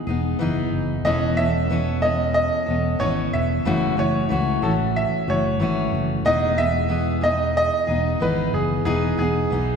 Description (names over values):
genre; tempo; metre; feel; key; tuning
acoustic pop; 92 BPM; 4/4; swing 55% on 16ths; E major; A4 = 441 Hz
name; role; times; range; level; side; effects
bright upright piano; melody; 0.0-9.8 s; G#4 to E5; -23 LUFS; right 1 dB; none
fingerpicked steel-string acoustic guitar; accompaniment; 0.0-9.8 s; F#2 to A4; -24 LUFS; left 2 dB; none
fretless electric bass; bass; 0.1-9.8 s; E1 to C#2; -24 LUFS; right 1 dB; none
room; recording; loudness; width
wet concert hall reverb, RT60 2.1 s; recorded in a church or concert hall; -19 LUFS; side -6 dB against mid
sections
0.0-9.8 A section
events
none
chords
0.0 Emaj7; 1.0 Aadd9/E; 3.6 F#m7; 6.2 Emaj7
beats
0.40 | 1.05 1.70 2.35 3.00 | 3.65 4.30 4.95 5.60 | 6.25 6.90 7.55 8.20 | 8.85 9.50